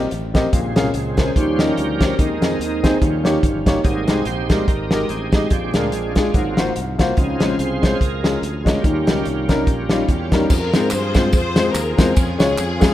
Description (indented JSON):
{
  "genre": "uptempo gospel",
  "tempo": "144 BPM",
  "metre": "4/4",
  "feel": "swing 56% on 8ths",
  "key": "Ab major",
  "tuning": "A4 = 440 Hz",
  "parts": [
    { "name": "warm baby grand piano", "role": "accompaniment", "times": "0.0-12.9 s", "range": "Ab2 to F5", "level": "-21 LUFS", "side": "left 2 dB", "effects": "none" },
    { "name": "bright tonewheel organ", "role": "sustained chords", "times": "0.0-12.9 s", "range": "Db3 to C5", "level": "-26 LUFS", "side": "right 4 dB", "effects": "slow rotary speaker, overdrive, chorus vibrato" },
    { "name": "modern bright fingered electric bass", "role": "bass", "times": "0.0-12.9 s", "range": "G1 to Ab2", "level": "-26 LUFS", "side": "equal", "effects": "none" },
    { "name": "warm soul drum kit", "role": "drums", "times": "0.1-12.9 s", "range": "crash cymbal, hi-hat, kick drum, ride cymbal, snare drum", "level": "-18 LUFS", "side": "equal", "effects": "none" },
    { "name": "rich studio string section", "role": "melody", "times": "10.1-12.9 s", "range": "Bb3 to C5", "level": "-23 LUFS", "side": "left 2 dB", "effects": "none" },
    { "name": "tambourine and handclaps", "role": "percussion", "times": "10.5-12.9 s", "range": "none", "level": "-32 LUFS", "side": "equal", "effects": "none" }
  ],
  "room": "moderate lush hall reverb, RT60 1.9 s, studio reverb",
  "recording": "rough home demo mix",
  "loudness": "-16 LUFS",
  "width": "side -13 dB against mid",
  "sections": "0.0-10.5 A section; 10.5-12.9 B section",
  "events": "tonewheel organ solo 0.0-10.5",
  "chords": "0.0 C7sus4; 0.5 Bbm7; 1.4 Eb7; 2.2 Ab/Eb; 3.0 Eb7; 3.8 Abmaj7; 5.5 Bb7; 6.3 Ab13; 7.2 Dbmaj7; 8.8 Eb7; 10.5 Fm; 12.2 Db",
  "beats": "0.12 | 0.53 0.94 1.36 1.77 | 2.19 2.60 3.01 3.43 | 3.84 4.26 4.67 5.09 | 5.51 5.92 6.34 6.76 | 7.17 7.59 8.01 8.42 | 8.84 9.26 9.67 10.09 | 10.50 10.92 11.34 11.75 | 12.17 12.58"
}